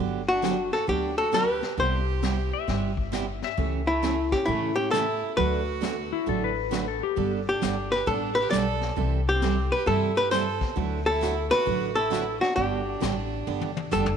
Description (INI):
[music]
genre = country, western swing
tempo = 133 BPM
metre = 4/4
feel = swing 65% on 8ths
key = G major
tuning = A4 = 439 Hz
[part]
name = picked steel-string acoustic guitar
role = accompaniment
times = 0.0-14.0 s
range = C3 to A4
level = -30 LUFS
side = right 9 dB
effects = none
[part]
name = upright bass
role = bass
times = 0.0-14.2 s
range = F#1 to A2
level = -31 LUFS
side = left 1 dB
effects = none
[part]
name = archtop guitar, miked and amplified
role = melody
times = 0.3-14.2 s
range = E4 to D5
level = -25 LUFS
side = left 1 dB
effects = none
[part]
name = clear fiddle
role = second line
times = 0.3-14.2 s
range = A3 to A4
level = -34 LUFS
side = right 9 dB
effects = none
[part]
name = vintage brush drum kit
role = drums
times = 0.4-14.2 s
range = brushed snare drum, hi-hat, kick drum, snare drum, toms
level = -35 LUFS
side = left 6 dB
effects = none
[part]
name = clean lap steel guitar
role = second line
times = 2.5-7.3 s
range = E4 to E5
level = -31 LUFS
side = left 11 dB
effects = none
[sound]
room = moderate echo chamber reverb, RT60 2.3 s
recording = 1960s-style stereo with parts hard left and right, tape saturation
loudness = -23 LUFS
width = side -7 dB against mid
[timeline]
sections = 0.0-14.2 A section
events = drum fill 13.5-14.2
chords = 0.0 Gmaj7; 1.8 Cmaj7; 3.6 A7/C#; 5.4 D; 7.2 Gadd9; 9.0 C6; 10.8 Dadd9; 12.6 G